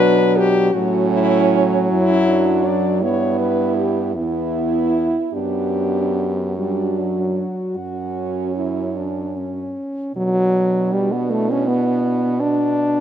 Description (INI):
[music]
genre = classical, lyrical piece for horn quartet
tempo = 48-56 BPM (dotted quarters)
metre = 12/8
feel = rubato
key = B minor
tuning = A4 = 440 Hz
[part]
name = dark French horn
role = melody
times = 0.0-13.0 s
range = D4 to D5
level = -22 LUFS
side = left 5 dB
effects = none
[part]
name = mellow French horn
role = second line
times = 0.0-13.0 s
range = C#4 to E4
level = -24 LUFS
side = right 12 dB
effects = none
[part]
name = mellow French horn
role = accompaniment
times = 0.0-13.0 s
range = F#3 to F#4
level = -20 LUFS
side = equal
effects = none
[part]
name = warm French horn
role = bass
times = 0.0-13.0 s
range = E2 to B2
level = -25 LUFS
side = right 3 dB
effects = none
[sound]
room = light reverb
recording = close, detailed microphones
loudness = -17 LUFS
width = side -9 dB against mid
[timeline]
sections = 0.0-10.1 A section; 10.1-13.0 B section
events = none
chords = 0.0 Bm; 0.7 F#m/A; 3.0 Em/G; 5.3 Bm/F#; 7.8 F#5; 10.1 Bm